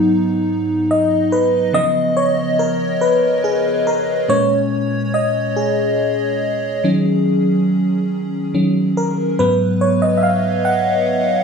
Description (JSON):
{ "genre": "R&B", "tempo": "47 BPM (dotted quarters)", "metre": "6/8", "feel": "straight", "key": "Eb minor", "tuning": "A4 = 441 Hz", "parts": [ { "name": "FM electric piano with soft pad layer", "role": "solo", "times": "0.0-11.4 s", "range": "Ab2 to Gb5", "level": "-14 LUFS", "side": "equal", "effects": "chorus" } ], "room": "light reverb", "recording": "studio ambience", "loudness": "-15 LUFS", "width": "side -5 dB against mid", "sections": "0.0-11.4 A section", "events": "FM electric piano solo 0.0-11.4", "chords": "0.0 Abm7; 1.7 Db7; 4.3 Bbm7; 6.8 Ebm7; 9.4 Abm7", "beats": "0.46 | 1.74 3.01 | 4.29 5.57 | 6.84 8.12 | 9.40 10.67" }